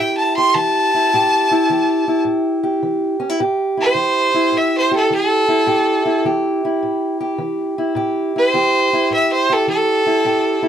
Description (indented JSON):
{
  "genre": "acoustic country blues, solo or duo",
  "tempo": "105 BPM",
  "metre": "4/4",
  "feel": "swing 67% on 8ths",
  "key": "unclear",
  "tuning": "A4 = 437 Hz",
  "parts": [
    { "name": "bright fiddle", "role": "melody", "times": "0.0-10.7 s", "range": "A4 to C6", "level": "-16 LUFS", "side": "equal", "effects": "none" },
    { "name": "fingerpicked steel-string acoustic guitar", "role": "accompaniment", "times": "0.0-10.7 s", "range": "A2 to G4", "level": "-18 LUFS", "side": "equal", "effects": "none" }
  ],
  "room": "light reverb",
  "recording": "dry, close 1970s-style studio recording",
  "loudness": "-14 LUFS",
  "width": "side -9 dB against mid",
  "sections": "0.0-3.4 A section; 3.4-10.7 B section",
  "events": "fiddle solo 0.0-3.4",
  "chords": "0.0 A7(no3); 3.4 A5"
}